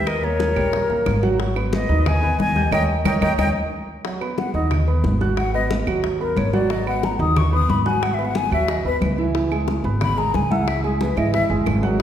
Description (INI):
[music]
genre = Afro-Cuban jazz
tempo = 181 BPM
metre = 4/4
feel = straight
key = G# minor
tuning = A4 = 443 Hz
[part]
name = breathy bright concert flute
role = melody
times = 0.0-3.5 s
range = C#5 to G#5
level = -25 LUFS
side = left 1 dB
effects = none
[part]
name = breathy mellow silver concert flute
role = second line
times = 0.0-11.4 s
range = G#4 to D#6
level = -24 LUFS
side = left 4 dB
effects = none
[part]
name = warm concert grand piano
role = accompaniment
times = 0.0-12.0 s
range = E3 to G6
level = -24 LUFS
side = right 4 dB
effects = none
[part]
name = upright bass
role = bass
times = 0.0-12.0 s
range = F#1 to D#2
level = -22 LUFS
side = equal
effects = none
[part]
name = bongos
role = percussion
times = 0.1-12.0 s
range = none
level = -30 LUFS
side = left 5 dB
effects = none
[part]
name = claves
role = percussion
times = 0.1-11.8 s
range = none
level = -34 LUFS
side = right 6 dB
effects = none
[part]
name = congas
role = percussion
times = 0.1-12.0 s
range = none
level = -26 LUFS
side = equal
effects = none
[sound]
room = wet recital hall reverb, RT60 1.6 s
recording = heard from further back in the room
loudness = -18 LUFS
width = side -10 dB against mid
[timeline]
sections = 0.0-4.0 A section; 4.0-12.0 B section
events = drum fill 2.7-4.0; band accent 2.7-4.0; flute solo 4.0-12.0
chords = 0.1 D#7; 1.4 G#m7; 2.7 D#7; 4.0 G#m7; 9.3 C#m7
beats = | 0.07 0.40 0.73 1.06 | 1.40 1.73 2.06 2.39 | 2.72 3.06 3.39 3.72 | 4.05 4.38 4.71 5.04 | 5.38 5.71 6.04 6.37 | 6.70 7.03 7.36 7.69 | 8.03 8.36 8.69 9.02 | 9.35 9.68 10.01 10.34 | 10.67 11.01 11.34 11.67 | 12.00